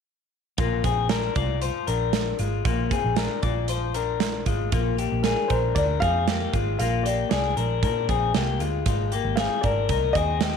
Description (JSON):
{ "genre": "jangly indie pop", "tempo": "116 BPM", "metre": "4/4", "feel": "straight", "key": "Bb mixolydian", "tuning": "A4 = 437 Hz", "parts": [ { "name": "electric guitar through a small old amp", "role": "arpeggios", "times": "0.6-10.6 s", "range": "Ab3 to D5", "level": "-26 LUFS", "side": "left 11 dB", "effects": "none" }, { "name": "vintage muted picked electric bass", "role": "bass", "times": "0.6-10.6 s", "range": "Ab1 to Bb2", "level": "-27 LUFS", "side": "right 1 dB", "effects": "none" }, { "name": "big rock drum kit", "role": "drums", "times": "0.6-10.5 s", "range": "hi-hat, kick drum, snare drum", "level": "-28 LUFS", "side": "right 5 dB", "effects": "none" }, { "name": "dark upright piano", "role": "melody", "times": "5.2-10.6 s", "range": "Bb4 to F5", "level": "-28 LUFS", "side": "equal", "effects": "slapback echo" } ], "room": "light reverb, small room ambience", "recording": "1960s-style stereo", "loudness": "-22 LUFS", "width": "side -6 dB against mid", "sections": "0.6-4.7 A section; 4.7-10.6 B section", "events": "none", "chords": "0.6 Bb; 8.9 Ab6", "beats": "| 0.59 1.10 1.62 2.14 | 2.66 3.17 3.69 4.21 | 4.73 5.24 5.76 6.28 | 6.79 7.31 7.83 8.35 | 8.86 9.38 9.90 10.41" }